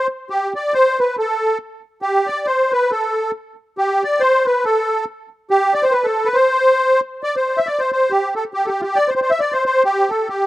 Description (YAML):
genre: celtic folk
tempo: 138 BPM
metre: 2/4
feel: swing 58% on 8ths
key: C major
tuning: A4 = 440 Hz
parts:
  - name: musette accordion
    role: solo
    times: 0.0-10.5 s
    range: F4 to E5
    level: -15 LUFS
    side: equal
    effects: slapback echo
room: light reverb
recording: recorded outdoors, with no room sound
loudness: -15 LUFS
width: side -16 dB against mid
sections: 0.3-7.2 A section; 7.2-10.5 B section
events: none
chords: none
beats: | 0.29 0.72 | 1.16 1.59 | 2.03 2.46 | 2.90 3.33 | 3.77 4.20 | 4.64 5.07 | 5.51 5.94 | 6.37 6.81 | 7.24 7.68 | 8.11 8.54 | 8.98 9.41 | 9.85 10.28